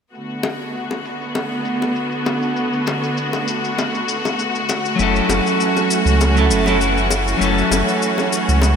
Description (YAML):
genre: sunset chillout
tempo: 99 BPM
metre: 4/4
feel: swing 54% on 16ths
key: unclear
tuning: A4 = 440 Hz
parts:
  - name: rich studio string section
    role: sustained chords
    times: 0.1-8.8 s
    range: D3 to F#4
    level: -20 LUFS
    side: equal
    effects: none
  - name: shaker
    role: drums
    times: 0.1-8.8 s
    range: none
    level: -28 LUFS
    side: left 5 dB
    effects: overdrive, low-pass filter on perc
  - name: bongos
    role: percussion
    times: 0.4-8.8 s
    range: none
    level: -26 LUFS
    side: left 3 dB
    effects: none
  - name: clean electric guitar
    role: accompaniment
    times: 5.0-8.8 s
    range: F#3 to A4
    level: -18 LUFS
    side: moving between left 5 dB and right 7 dB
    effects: auto-pan, digital delay
  - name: warm sub bass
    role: bass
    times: 5.0-8.8 s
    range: F#1 to C#2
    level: -18 LUFS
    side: equal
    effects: none
room: wet lush hall reverb, RT60 2.6 s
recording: bright 1980s-style digital production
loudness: -16 LUFS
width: side -7 dB against mid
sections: 0.1-8.8 A section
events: none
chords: 0.1 Bm7; 5.0 F#m7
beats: | 0.14 0.75 1.35 1.96 | 2.57 3.17 3.78 4.38 | 4.99 5.60 6.20 6.81 | 7.41 8.02 8.63